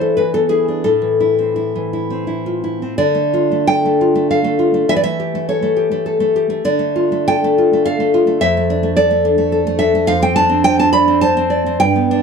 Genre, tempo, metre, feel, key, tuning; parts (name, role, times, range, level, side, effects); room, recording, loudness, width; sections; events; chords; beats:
romantic piece for solo classical guitar; 82-110 BPM; 3/4; rubato; D minor; A4 = 440 Hz
nylon-string guitar; solo; 0.0-12.2 s; F2 to B5; -13 LUFS; equal
light reverb; dark, warm production; -13 LUFS; side -6 dB against mid
0.0-3.0 A section; 3.0-12.2 B section
0.2 E7; 0.8 Am; 3.0 Dm; 4.9 A7/E; 6.6 Dm; 8.4 Dm/F; 10.1 Dm7/F
0.18 | 0.85 1.56 2.28 | 2.98 3.68 4.29 | 4.88 5.48 6.06 | 6.63 7.27 7.86 | 8.42 8.99 9.53 | 10.09 10.66 11.23 | 11.80